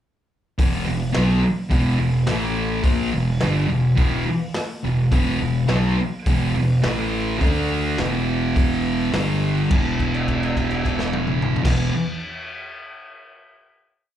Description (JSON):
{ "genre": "garage rock duo or trio", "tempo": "105 BPM", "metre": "4/4", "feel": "straight", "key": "unclear", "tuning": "A4 = 444 Hz", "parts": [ { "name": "thick fuzz guitar", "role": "riff", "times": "0.6-11.9 s", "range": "E2 to D4", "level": "-20 LUFS", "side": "equal", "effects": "distortion" }, { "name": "growling fingered electric bass", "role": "bass", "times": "0.6-11.9 s", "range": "E1 to D2", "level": "-26 LUFS", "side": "equal", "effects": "overdrive" }, { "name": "raw garage drum kit", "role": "drums", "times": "0.6-11.8 s", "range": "crash cymbal, hi-hat, kick drum, snare drum, toms", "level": "-25 LUFS", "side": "equal", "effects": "none" } ], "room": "moderate club reverb, RT60 0.5 s", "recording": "live gig heard through the venue's PA, club reverb", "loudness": "-18 LUFS", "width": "side -10 dB against mid", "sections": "0.6-9.7 riff; 9.7-12.0 final chord", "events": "held note 9.7-11.6", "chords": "0.6 E5; 2.3 A5; 2.8 E5; 6.8 A5; 7.4 D5; 8.0 E5; 9.1 G5; 9.7 E5" }